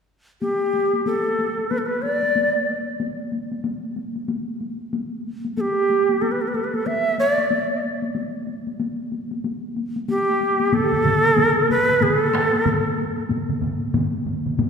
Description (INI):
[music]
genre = japanese traditional, taiko drum ensemble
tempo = 93 BPM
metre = 4/4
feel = swing 60% on 16ths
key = A suspended pentatonic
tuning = A4 = 442 Hz
[part]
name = bright shakuhachi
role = melody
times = 0.4-13.0 s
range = G4 to E5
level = -19 LUFS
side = equal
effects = none
[part]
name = solo taiko drums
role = percussion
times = 0.4-14.7 s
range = none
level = -26 LUFS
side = left 2 dB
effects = none
[part]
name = taiko ensemble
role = percussion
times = 10.7-14.7 s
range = none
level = -28 LUFS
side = left 3 dB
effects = none
[part]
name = taiko ensemble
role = percussion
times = 10.7-14.7 s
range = none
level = -26 LUFS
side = right 3 dB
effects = none
[sound]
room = wet concert hall reverb, RT60 2.3 s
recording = recorded in a church or concert hall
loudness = -20 LUFS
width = side -6 dB against mid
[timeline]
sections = 0.4-10.7 A section; 10.7-14.7 B section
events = none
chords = none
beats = | 0.41 1.05 1.70 2.34 | 2.99 3.63 4.28 4.92 | 5.57 6.21 6.86 7.50 | 8.15 8.79 9.44 10.08 | 10.72 11.37 12.01 12.66 | 13.30 13.94 14.59